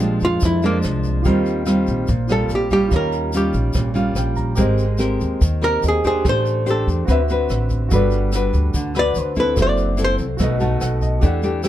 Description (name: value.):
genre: bossa nova.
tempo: 144 BPM.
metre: 4/4.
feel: straight.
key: unclear.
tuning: A4 = 440 Hz.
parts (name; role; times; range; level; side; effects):
archtop guitar, miked and amplified; melody; 0.0-10.2 s; Bb3 to D5; -20 LUFS; equal; none.
nylon-string guitar; accompaniment; 0.0-11.7 s; F2 to C5; -21 LUFS; left 1 dB; none.
warm concert grand piano; accompaniment; 0.0-11.7 s; D4 to Bb5; -28 LUFS; right 4 dB; none.
upright bass; bass; 0.0-11.7 s; F#1 to F2; -21 LUFS; equal; none.
jazz brush drum kit; drums; 0.0-11.7 s; hi-hat, kick drum, rim click; -25 LUFS; equal; none.
tube shaker; percussion; 0.2-11.7 s; none; -36 LUFS; left 4 dB; none.
room: little or no reverb.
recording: dark, warm production.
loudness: -16 LUFS.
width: side -12 dB against mid.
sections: 0.0-11.2 A section.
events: hollow-body jazz guitar solo 0.0-11.7; grand piano fill 3.7-4.6, 10.4-11.2.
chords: 0.0 Bb7; 1.3 Eb69; 2.9 Eb9; 4.6 Abmaj9; 6.2 Am7; 7.1 D13; 7.9 Gmaj7; 9.6 F#m7b5; 10.4 B7.